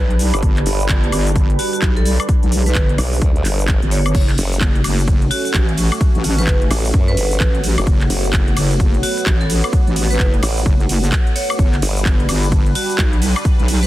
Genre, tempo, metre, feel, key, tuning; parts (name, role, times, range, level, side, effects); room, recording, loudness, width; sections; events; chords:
bass house; 129 BPM; 4/4; swing 62% on 16ths; F# phrygian; A4 = 442 Hz
vibraphone with hard mallets; melody; 0.0-13.9 s; F#4 to C#5; -26 LUFS; right 2 dB; tape echo
sweeping resonant pad; sustained chords; 0.0-13.9 s; G3 to B4; -27 LUFS; equal; chorus, sidechain pumping
wobble bass; bass; 0.0-13.9 s; F#1 to B1; -18 LUFS; equal; chorus, overdrive, sidechain pumping
deep dark ambient pad; texture; 0.0-13.9 s; F#4 to B5; -29 LUFS; right 1 dB; chorus, built-in reverb, sidechain pumping
house drum kit; drums; 0.1-13.9 s; cabasa, crash cymbal, handclaps, hi-hat, ride cymbal, woodblock; -23 LUFS; equal
formant-sweep wobble bass; bass; 0.3-12.0 s; F#1 to F#2; -18 LUFS; equal; chorus, tube saturation, sidechain pumping
electronic kick drum; drums; 0.4-13.6 s; -16 LUFS; equal; overdrive
digital ambience; dense, heavily limited modern master; -14 LUFS; side -15 dB against mid
0.0-13.9 A section
0.0 G; 4.1 F#m; 11.6 G